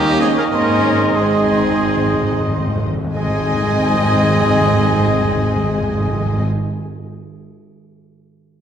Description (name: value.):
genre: quick classical-period movement for symphony orchestra.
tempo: 87-100 BPM.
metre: 4/4.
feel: rubato.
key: Ab major.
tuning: A4 = 440 Hz.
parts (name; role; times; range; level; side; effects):
rich studio violin section; melody; 0.0-6.4 s; Eb5; -27 LUFS; left 4 dB; none.
clear oboe; second line; 0.0-6.4 s; Eb5; -26 LUFS; right 1 dB; none.
mellow clarinet; second line; 0.0-6.4 s; C4 to Eb4; -26 LUFS; right 3 dB; none.
small flute group; second line; 0.0-6.4 s; Ab5 to Db6; -26 LUFS; right 1 dB; none.
mellow bassoon; accompaniment; 0.0-6.4 s; Ab3 to Bb3; -25 LUFS; right 2 dB; none.
rich studio viola section; accompaniment; 0.0-6.4 s; C4 to Eb4; -27 LUFS; right 2 dB; none.
mellow French horn section; sustained chords; 0.0-6.4 s; Ab3 to Db4; -25 LUFS; left 4 dB; none.
clear trumpet; stabs; 0.0-6.4 s; G4 to Bb4; -22 LUFS; left 1 dB; none.
clear studio cello section; bass; 0.0-6.4 s; G3 to Bb3; -26 LUFS; right 1 dB; none.
rich studio double bass section; bass; 0.0-6.4 s; Ab1 to Eb2; -22 LUFS; right 3 dB; none.
rich studio violin section; second line; 0.2-6.4 s; C4 to Ab5; -27 LUFS; left 3 dB; none.
timpani; percussion; 0.5-6.4 s; Ab2; -22 LUFS; left 1 dB; none.
room: wet scoring stage reverb, RT60 1.7 s.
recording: none.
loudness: -14 LUFS.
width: side -8 dB against mid.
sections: 0.0-3.2 A section; 3.2-5.8 B section.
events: slowing down 0.0-3.2; timpani fill 0.5-3.2.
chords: 0.0 Eb7; 0.5 Ab.